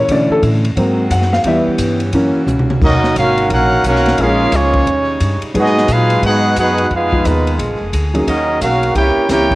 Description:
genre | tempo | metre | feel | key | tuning
jazz, big band swing | 176 BPM | 4/4 | swing 63% on 8ths | Eb minor | A4 = 440 Hz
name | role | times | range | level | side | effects
warm concert grand piano | accompaniment | 0.0-9.5 s | D3 to F#5 | -16 LUFS | equal | plate reverb
clear saxophone section | sustained chords | 0.0-9.6 s | C3 to Ab4 | -25 LUFS | equal | none
upright bass | bass | 0.0-9.6 s | F1 to B2 | -18 LUFS | equal | none
swinging big-band drum kit | drums | 0.1-9.6 s | crash cymbal, hi-hat, kick drum, ride cymbal, snare drum, toms | -22 LUFS | equal | none
warm trumpet section | melody | 2.8-9.6 s | Ab3 to G5 | -15 LUFS | equal | cassette tape, plate reverb
bright trombone section | second line | 2.8-9.6 s | Eb3 to G4 | -18 LUFS | right 2 dB | plate reverb
room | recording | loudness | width
moderate studio reverb, RT60 0.6 s | home recording on cassette | -12 LUFS | side -18 dB against mid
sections
0.0-2.8 A section; 2.8-9.6 B section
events
grand piano solo 0.0-2.8; drum fill 2.5-2.8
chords
0.1 Bm11; 0.8 G#7; 1.5 C#m7b5; 2.1 F#7; 2.8 Ebm9; 4.2 Bbm7; 4.9 Eb7; 5.5 Abm7; 6.9 Fm7b5; 7.6 Bb7; 8.3 Ebm9; 9.0 C7b9

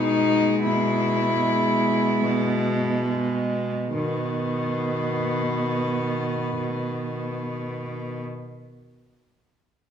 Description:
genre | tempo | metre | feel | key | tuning
classical, lyrical piece for cello ensemble | 34-41 BPM | 4/4 | rubato | B major | A4 = 440 Hz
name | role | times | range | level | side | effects
warm cello | melody | 0.0-8.2 s | B3 to E4 | -26 LUFS | left 3 dB | none
dark cello | second line | 0.0-8.2 s | B3 | -31 LUFS | right 9 dB | none
warm cello | accompaniment | 0.0-8.2 s | D#3 to G#3 | -28 LUFS | left 2 dB | none
rich cello | bass | 0.0-8.2 s | B2 | -27 LUFS | right 1 dB | none
room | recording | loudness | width
wet recital hall reverb, RT60 1.4 s | small room reverb | -22 LUFS | side -8 dB against mid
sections
0.0-3.9 A section; 3.9-9.9 B section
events
slowing down 0.0-3.9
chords
0.0 E/B; 3.9 B

